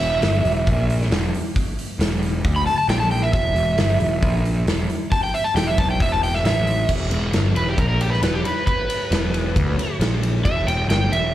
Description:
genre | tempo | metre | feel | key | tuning
blues rock power trio and southern rock | 135 BPM | 4/4 | straight | E minor | A4 = 439 Hz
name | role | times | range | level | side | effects
overdriven slide guitar | melody | 0.0-11.3 s | G4 to B5 | -23 LUFS | right 1 dB | slapback echo, tape echo
fuzz picked electric bass | bass | 0.0-11.3 s | E1 to D2 | -21 LUFS | equal | overdrive
big rock drum kit | drums | 0.2-11.2 s | crash cymbal, hi-hat, kick drum, ride cymbal, snare drum | -23 LUFS | equal | none
room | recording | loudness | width
studio ambience | live gig heard through the venue's PA, club reverb | -18 LUFS | side -13 dB against mid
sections
0.0-6.9 A section; 6.9-11.3 A section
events
electric slide guitar solo 0.0-6.9, 6.9-11.3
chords
0.0 Em; 0.7 N.C.; 1.1 E7(no3); 2.9 Gm69/Bb; 3.3 Em; 4.2 N.C.; 4.7 E5; 6.4 A5; 6.9 Em; 7.8 Gm/Bb; 8.2 E5; 10.0 N.C.; 10.5 Em

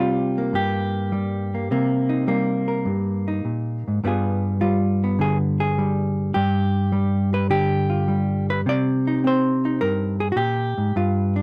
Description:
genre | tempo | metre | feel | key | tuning
solo jazz | 104 BPM | 4/4 | swing 69% on 8ths, rubato | C minor | A4 = 440 Hz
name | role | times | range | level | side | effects
hollow-body jazz guitar | solo | 0.0-11.4 s | G2 to D5 | -22 LUFS | equal | none
room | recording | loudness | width
light reverb | close, detailed microphones | -22 LUFS | mono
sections
0.0-11.4 A section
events
none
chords
0.0 Cm7; 4.0 G7b9; 8.7 Cm7

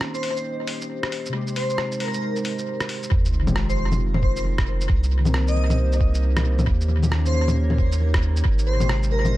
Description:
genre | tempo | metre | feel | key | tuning
future garage | 135 BPM | 4/4 | swing 61% on 16ths | F minor | A4 = 441 Hz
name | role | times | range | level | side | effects
muted felt-like synth keys | accompaniment | 0.0-9.4 s | C3 to Bb4 | -31 LUFS | left 3 dB | chorus, sidechain pumping, dub echo
dark analog pad | sustained chords | 0.0-9.4 s | Ab3 to Eb5 | -32 LUFS | right 2 dB | chorus, sidechain pumping
lo-fi sampler-style drum kit | drums | 0.0-9.3 s | bongos, hi-hat, rim click, shaker | -27 LUFS | left 1 dB | small room reverb, tape echo
backwards swelling texture | texture | 0.0-9.4 s | Bb3 to C5 | -38 LUFS | right 1 dB | built-in reverb
airy dreamy lead | melody | 0.1-9.4 s | Bb4 to Eb5 | -30 LUFS | left 1 dB | chorus, phaser, analog delay
warm sub bass | bass | 3.1-9.4 s | F1 to Eb2 | -21 LUFS | equal | none
electronic kick drum | drums | 3.1-8.6 s | none | -22 LUFS | equal | small room reverb
sub drop | sound effects | 3.1-4.9 s | none | -28 LUFS | right 1 dB | none
room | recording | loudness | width
light reverb | echo-heavy mix | -20 LUFS | side -16 dB against mid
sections
0.0-3.1 A section; 3.1-9.4 B section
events
filter sweep on synth keys 0.0-3.1; impact 3.1-4.9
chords
0.0 Eb7; 1.3 Abmaj7; 3.1 Fm9; 4.9 Cm7; 6.7 Eb7; 8.4 Abmaj7

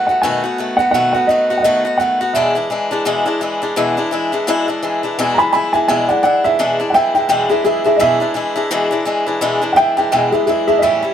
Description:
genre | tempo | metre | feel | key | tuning
rock | 170 BPM | 4/4 | swing 58% on 8ths | E mixolydian | A4 = 440 Hz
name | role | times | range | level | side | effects
dark upright piano | melody | 0.0-3.0, 5.3-11.1 s | G#4 to B5 | -14 LUFS | right 1 dB | none
picked swing-style acoustic guitar | accompaniment | 0.0-11.1 s | E2 to F#4 | -17 LUFS | left 2 dB | none
room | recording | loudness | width
moderate studio reverb, RT60 0.9 s | none | -13 LUFS | side -9 dB against mid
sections
0.0-5.2 A section; 5.2-11.1 B section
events
upright piano solo 5.2-11.1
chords
0.0 B7; 2.4 E7

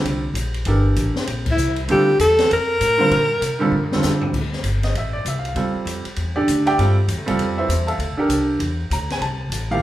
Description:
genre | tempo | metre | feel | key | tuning
modal jazz | 196 BPM | 4/4 | swing 62% on 8ths | G dorian from 4.3 s | A4 = 440 Hz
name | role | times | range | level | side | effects
clear baby grand piano | accompaniment | 0.0-9.8 s | D3 to Bb5 | -21 LUFS | right 2 dB | none
upright bass | bass | 0.0-9.8 s | G1 to C3 | -23 LUFS | equal | none
open jazz drum kit | drums | 0.1-9.6 s | crash cymbal, hi-hat, kick drum, ride cymbal, snare drum, toms | -28 LUFS | left 2 dB | none
clear alto saxophone | melody | 1.5-4.0 s | E4 to Bb4 | -17 LUFS | equal | none
room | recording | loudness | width
wet large studio reverb, RT60 0.9 s | band playing live in one room | -17 LUFS | side -14 dB against mid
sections
0.0-4.3 A section; 4.3-9.8 B section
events
band accent 1.4; drum fill 3.7-4.3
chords
0.0 Gm11; 4.3 G13sus4

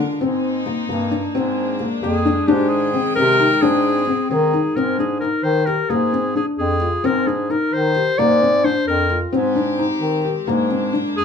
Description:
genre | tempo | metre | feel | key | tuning
contemporary instrumental, chamber music in an uneven meter | 263 BPM (eighths) | 5/8 | straight | Ab lydian | A4 = 439 Hz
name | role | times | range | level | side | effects
rich chamber string section | sustained chords | 0.0-4.7, 9.3-11.2 s | Eb3 to G5 | -27 LUFS | equal | none
felt-muted upright piano | arpeggios | 0.0-11.2 s | Bb3 to G4 | -20 LUFS | left 3 dB | none
mellow bass clarinet | bass | 0.0-11.2 s | F2 to Eb3 | -22 LUFS | equal | none
clear clarinet | melody | 2.0-11.2 s | G4 to D5 | -20 LUFS | left 1 dB | none
room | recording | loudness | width
moderate studio reverb, RT60 0.7 s | minimal, uncompressed stereo recording | -16 LUFS | side -6 dB against mid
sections
0.0-4.8 A section; 4.8-11.2 B section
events
none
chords
0.2 Cm9/Ab; 1.3 Bb7/Ab; 2.5 Abmaj9#11; 5.9 Bb9/Ab; 7.0 Abmaj7; 8.2 Bb9/Ab; 9.3 Abmaj7; 10.5 Bb9/Ab

